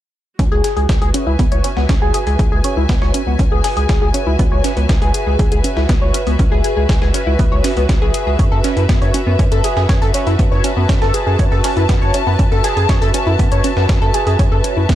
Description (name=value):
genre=melodic techno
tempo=120 BPM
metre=4/4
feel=straight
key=C# minor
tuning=A4 = 441 Hz
part: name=tight sequenced synth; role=arpeggios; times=0.4-14.9 s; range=B3 to C#5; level=-20 LUFS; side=equal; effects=chorus, sidechain pumping, tape echo
part: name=round analog bass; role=bass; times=0.4-14.9 s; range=B1 to F#2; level=-17 LUFS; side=equal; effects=sidechain pumping
part: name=dusty soul sampler-style drum kit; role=drums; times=0.4-14.9 s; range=hi-hat, snare drum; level=-30 LUFS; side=equal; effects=high-pass filter on hats, high-pass filter on snare, high-pass filter on room
part: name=electronic kick drum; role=drums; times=0.4-14.9 s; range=none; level=-16 LUFS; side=equal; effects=none
part: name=warm studio string section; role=texture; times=0.4-14.9 s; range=F#4 to A5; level=-22 LUFS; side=equal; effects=sidechain pumping
part: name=electronic hi-hat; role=drums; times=0.6-14.7 s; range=none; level=-24 LUFS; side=left 5 dB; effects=none
room=little or no reverb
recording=none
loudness=-13 LUFS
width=side -12 dB against mid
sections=0.4-14.9 A section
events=none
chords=0.4 C#m; 8.4 F#m